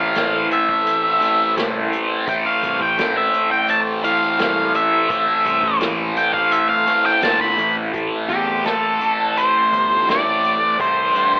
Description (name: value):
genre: psychedelic rock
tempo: 85 BPM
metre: 4/4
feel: straight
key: A minor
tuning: A4 = 440 Hz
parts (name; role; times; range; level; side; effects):
- octave-fuzz lead guitar; melody; 0.0-11.4 s; G4 to B5; -20 LUFS; equal; distortion, slapback echo
- pedal harmonium; sustained chords; 0.0-11.4 s; E3 to E5; -30 LUFS; equal; none
- thick fuzz guitar; riff; 0.0-11.4 s; A2 to A3; -25 LUFS; equal; distortion, phaser
- fuzz picked electric bass; bass; 0.0-11.4 s; G1 to A2; -31 LUFS; equal; overdrive
- soft-mallet drum kit; drums; 0.2-11.4 s; hi-hat, kick drum, snare drum; -30 LUFS; equal; none
room: moderate echo chamber reverb, RT60 2.3 s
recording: telephone sound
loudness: -18 LUFS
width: mono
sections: 0.0-7.9 A section; 7.9-11.4 B section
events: lead electric guitar solo 0.0-7.9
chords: 0.0 Am